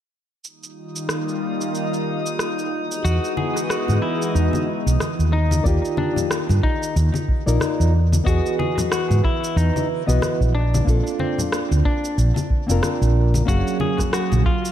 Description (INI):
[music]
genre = sunset chillout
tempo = 92 BPM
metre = 4/4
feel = swing 58% on 16ths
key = unclear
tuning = A4 = 440 Hz
[part]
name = lush unison pad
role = sustained chords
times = 0.8-5.7 s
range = Eb3 to D#5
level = -25 LUFS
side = equal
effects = chorus, phaser
[part]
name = electronic shaker and rim click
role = drums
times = 0.4-14.7 s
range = none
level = -30 LUFS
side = right 1 dB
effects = small room ambience
[part]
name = drifting glass-harmonics texture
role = texture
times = 0.9-5.7 s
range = Eb4 to Eb6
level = -32 LUFS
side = left 1 dB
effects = chorus, built-in reverb
[part]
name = semi-hollow electric guitar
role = arpeggios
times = 3.0-14.7 s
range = C4 to G#4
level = -28 LUFS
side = left 3 dB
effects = vintage 12-bit sampler grit, analog delay
[part]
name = woody fretless electric bass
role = bass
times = 3.0-14.4 s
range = F1 to G#2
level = -18 LUFS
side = equal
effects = none
[part]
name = congas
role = percussion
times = 3.4-14.4 s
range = none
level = -28 LUFS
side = left 3 dB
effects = none
[part]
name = flamenco guitar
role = accompaniment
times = 5.6-14.7 s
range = Eb3 to F5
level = -24 LUFS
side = moving between left 3 dB and right 4 dB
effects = auto-pan, analog delay
[part]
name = electronic kick drum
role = drums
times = 5.7-14.6 s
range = none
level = -21 LUFS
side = equal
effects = small room ambience
[sound]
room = light reverb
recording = echo-heavy mix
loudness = -18 LUFS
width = side -11 dB against mid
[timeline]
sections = 0.4-5.7 A section; 5.7-14.7 B section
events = none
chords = 0.4 Ebadd9; 2.7 Emaj9; 5.3 Ebadd9; 5.7 Ebmaj9; 7.9 Emaj9; 10.5 Bbmaj9; 13.5 Gbmaj9